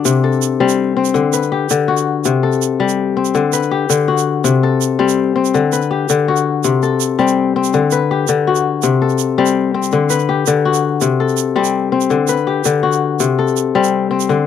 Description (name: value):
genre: west african traditional, West African string and xylophone music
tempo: 110 BPM (dotted quarters)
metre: 12/8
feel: straight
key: unclear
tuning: A4 = 442 Hz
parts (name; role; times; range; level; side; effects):
- kora; arpeggios; 0.0-14.5 s; C3 to B4; -13 LUFS; left 6 dB; none
- egg shaker; percussion; 0.1-14.3 s; none; -23 LUFS; right 33 dB; none
room: light reverb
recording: dry, close 1970s-style studio recording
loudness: -13 LUFS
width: side -8 dB against mid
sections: 0.0-14.5 A section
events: none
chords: 0.0 C5; 1.1 D; 2.2 C5; 3.3 D; 4.4 C5; 5.5 D; 6.6 C5; 7.7 D; 8.8 C5; 9.9 D; 11.0 C5; 12.1 D; 13.2 C5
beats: | 0.05 0.60 1.15 1.70 | 2.25 2.80 3.35 3.90 | 4.45 5.00 5.54 6.09 | 6.64 7.19 7.74 8.28 | 8.83 9.38 9.92 10.47 | 11.02 11.56 12.11 12.65 | 13.20 13.75 14.29